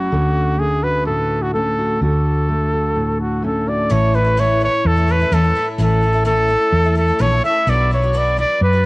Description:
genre	indie folk with a building arrangement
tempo	127 BPM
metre	4/4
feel	straight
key	A major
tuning	A4 = 441 Hz
part	warm trumpet	melody	0.0-8.9 s	F#4 to E5	-18 LUFS	equal	cassette tape, tape echo
part	fingerpicked steel-string acoustic guitar	accompaniment	0.0-5.8 s	A2 to F#4	-23 LUFS	equal	cassette tape
part	hollow-body short-scale fingered electric bass	bass	0.0-8.9 s	A1 to F#2	-18 LUFS	equal	none
part	picked twelve-string acoustic guitar	accompaniment	3.9-8.8 s	A2 to B4	-23 LUFS	left 3 dB	cassette tape
room	light reverb, small room ambience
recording	home recording on cassette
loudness	-14 LUFS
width	side -22 dB against mid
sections	0.0-3.9 A section; 3.9-8.9 B section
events	none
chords	0.1 Dmaj7; 3.9 A; 7.7 Bm

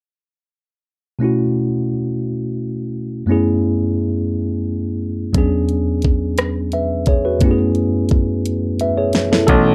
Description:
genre	slow six-eight R&B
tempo	58 BPM (dotted quarters)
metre	6/8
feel	straight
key	F# minor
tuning	A4 = 441 Hz
part	tine electric piano	accompaniment	1.2-9.7 s	E2 to E5	-19 LUFS	equal	none
part	smooth R&B drum kit	drums	5.3-9.6 s	hi-hat, kick drum, rim click, snare drum	-19 LUFS	equal	none
part	clear grand piano	bass	9.5-9.7 s	B1	-17 LUFS	equal	none
room	light reverb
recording	dry, close 1970s-style studio recording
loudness	-18 LUFS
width	mono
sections	1.2-9.5 A section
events	drum fill 8.4-9.5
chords	1.2 B9sus4; 3.3 F#m11; 5.3 E13; 7.4 F#m11

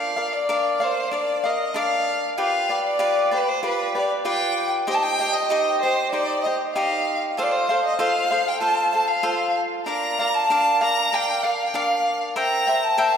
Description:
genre	mexican folk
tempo	96 BPM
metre	4/4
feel	straight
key	Bb major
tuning	A4 = 440 Hz
part	clear violin	melody	0.0-13.2 s	B4 to Bb5	-22 LUFS	equal	none
part	cavaquinho	accompaniment	0.0-13.2 s	D4 to G5	-23 LUFS	equal	none
room	wet church reverb, RT60 2.9 s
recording	recorded in a church or concert hall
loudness	-19 LUFS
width	side -7 dB against mid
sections	0.0-13.2 A section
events	none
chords	0.0 Bb; 2.4 G7; 4.9 Cm; 7.4 F; 9.9 Bb; 12.4 C7

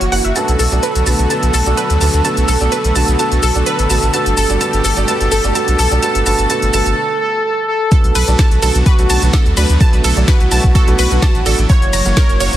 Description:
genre	progressive house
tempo	127 BPM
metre	4/4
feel	straight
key	B minor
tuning	A4 = 440 Hz
part	expressive portamento lead	melody	0.0-12.6 s	F#4 to C#5	-18 LUFS	equal	analog chorus, tape echo
part	supersaw pad	sustained chords	0.0-12.6 s	D3 to G4	-24 LUFS	equal	sidechain pumping
part	saturated sub bass	bass	0.0-12.6 s	F#1 to D2	-15 LUFS	equal	sidechain pumping
part	deep house drum kit	drums	0.0-12.6 s	hi-hat, ride cymbal, shaker, snare drum	-21 LUFS	left 1 dB	sidechain pumping on hats, high-pass filter on hats, sidechain pumping on perc, high-pass filter on perc, sidechain pumping on cymbals, high-pass filter on cymbals, high-pass filter on snare
part	analog pluck	arpeggios	0.1-12.4 s	A4 to A#5	-21 LUFS	right 1 dB	chorus, sidechain pumping, tape echo
part	felt-muted upright piano	stabs	0.1-12.6 s	B2 to F#5	-22 LUFS	right 4 dB	sidechain pumping, tape echo
part	electronic kick drum	drums	7.9-12.3 s	none	-11 LUFS	equal	none
room	light reverb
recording	dense, heavily limited modern master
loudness	-11 LUFS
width	side -12 dB against mid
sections	0.0-7.9 A section; 7.9-12.6 B section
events	build-up 0.0-7.9; filter sweep on synth pluck 0.0-7.9; break 7.0-7.9; drop 7.9-12.6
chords	0.4 Bm7; 4.1 Gadd9; 7.9 Bm7; 11.7 F#7

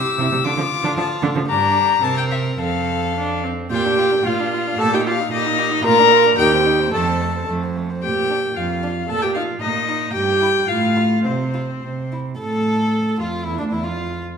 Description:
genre	quick classical-period movement for string quartet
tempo	102-116 BPM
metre	2/4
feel	rubato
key	F major, Bb major from 3.7 s, F major from 10.1 s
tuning	A4 = 438 Hz
part	rich violin	melody	0.0-14.2 s	D4 to E6	-20 LUFS	left 9 dB	none
part	warm violin	second line	0.0-14.2 s	A3 to Bb4	-28 LUFS	left 1 dB	none
part	warm viola	accompaniment	0.2-14.2 s	F3 to Bb4	-22 LUFS	right 4 dB	none
part	rich cello	bass	0.2-14.2 s	D2 to D3	-22 LUFS	right 3 dB	none
room	wet recital hall reverb, RT60 1.5 s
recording	minimal, uncompressed stereo recording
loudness	-16 LUFS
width	side -6 dB against mid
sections	0.0-3.7 A section; 3.7-12.4 B section; 12.4-14.4 A section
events	none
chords	0.4 Dm; 1.5 Gm; 2.0 C7(no3); 2.6 F; 3.7 Bb; 4.8 Eb/Bb; 5.8 Bb; 6.4 Cm/Eb; 6.9 F; 8.0 Bb5; 9.1 Eb5/Bb; 10.1 N.C.; 10.7 F/A; 11.3 N.C.; 12.4 F/A; 13.5 Dmadd9

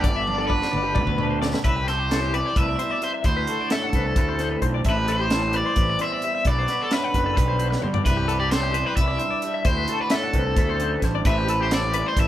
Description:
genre	math rock and midwest emo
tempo	262 BPM (eighths)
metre	7/8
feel	straight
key	G major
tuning	A4 = 440 Hz
part	cranked stack guitar	melody	0.0-12.3 s	A4 to E5	-26 LUFS	equal	overdrive
part	electric guitar through a small old amp	accompaniment	0.0-12.3 s	D2 to G4	-28 LUFS	right 2 dB	none
part	twelve-string electric guitar	arpeggios	0.0-12.3 s	G4 to F#5	-29 LUFS	left 7 dB	tremolo
part	fuzz fingered electric bass	bass	0.0-12.3 s	F#1 to G2	-27 LUFS	equal	overdrive
part	crisp fusion drum kit	drums	0.0-12.3 s	hi-hat, kick drum, snare drum, splash cymbal, toms	-24 LUFS	equal	none
room	moderate large studio reverb, RT60 0.9 s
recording	band playing live in one room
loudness	-20 LUFS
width	side -12 dB against mid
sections	0.0-1.6 A section; 1.6-12.3 B section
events	drum fill 0.3-1.6, 7.7-8.1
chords	0.0 Gmaj7; 1.6 Cmaj7; 3.3 D9; 4.9 Am7; 6.5 Gmaj7; 8.1 Cmaj7; 9.7 D9; 11.3 Am7

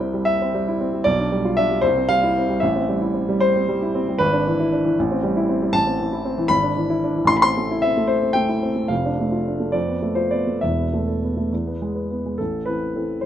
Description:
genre	classical, romantic character piece for solo piano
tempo	66-79 BPM (dotted quarters)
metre	6/8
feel	rubato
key	A minor from 5.7 s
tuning	A4 = 440 Hz
part	warm grand piano	solo	0.0-13.3 s	E1 to C6	-18 LUFS	equal	none
room	light reverb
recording	none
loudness	-18 LUFS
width	side -10 dB against mid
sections	0.0-12.4 A section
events	none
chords	0.0 C; 1.1 G7/B; 1.9 C; 2.6 Am7; 4.2 E7/G#; 5.0 Am7; 5.7 Am; 6.5 E7/G#; 7.3 Am; 8.9 Dm/F; 9.7 Bm7b5/F; 10.6 Esus4; 11.5 E; 12.4 Am

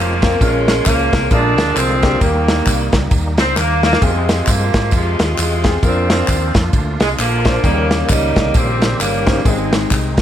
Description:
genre	uptempo gospel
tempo	133 BPM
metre	4/4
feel	swing 59% on 8ths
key	unclear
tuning	A4 = 440 Hz
part	clear saxophone section	melody	0.0-10.2 s	C3 to F4	-18 LUFS	equal	none
part	bright tonewheel organ	sustained chords	0.0-10.2 s	Db3 to G4	-25 LUFS	right 2 dB	fast rotary speaker, chorus vibrato
part	fingered electric bass	bass	0.0-10.2 s	F1 to Ab2	-20 LUFS	equal	none
part	clear grand piano	accompaniment	0.2-10.1 s	Ab2 to C5	-21 LUFS	left 2 dB	none
part	warm soul drum kit	drums	0.2-10.2 s	kick drum, ride cymbal, snare drum	-17 LUFS	equal	none
part	tambourine and handclaps	percussion	0.2-10.2 s	none	-27 LUFS	equal	none
room	light reverb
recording	none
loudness	-12 LUFS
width	side -10 dB against mid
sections	0.0-10.2 A section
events	drum fill 3.6-4.0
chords	0.4 Bbm; 1.3 Bb7; 2.2 Eb; 4.0 Fm; 5.8 Bb; 7.6 Eb7; 9.4 Ab

